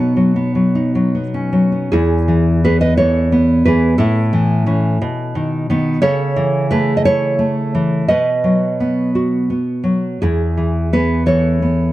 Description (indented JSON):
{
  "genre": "romantic piece for solo classical guitar",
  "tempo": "50-61 BPM (dotted quarters)",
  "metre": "6/8",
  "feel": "rubato",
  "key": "E major",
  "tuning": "A4 = 440 Hz",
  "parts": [
    { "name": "nylon-string guitar", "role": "solo", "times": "0.0-11.9 s", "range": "E2 to D#5", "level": "-13 LUFS", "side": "equal", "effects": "none" }
  ],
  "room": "moderate spring reverb, RT60 2.1 s",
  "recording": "dark, warm production",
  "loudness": "-13 LUFS",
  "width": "side -15 dB against mid",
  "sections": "0.0-1.9 A section; 1.9-11.9 B section",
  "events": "none",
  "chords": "0.0 B; 1.9 E; 4.0 A; 5.0 B; 6.0 A/C#; 8.1 B; 10.2 E",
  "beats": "0.74 | 1.92 2.97 | 4.00 5.01 | 6.00 7.02 | 8.06 9.12 | 10.20 11.26"
}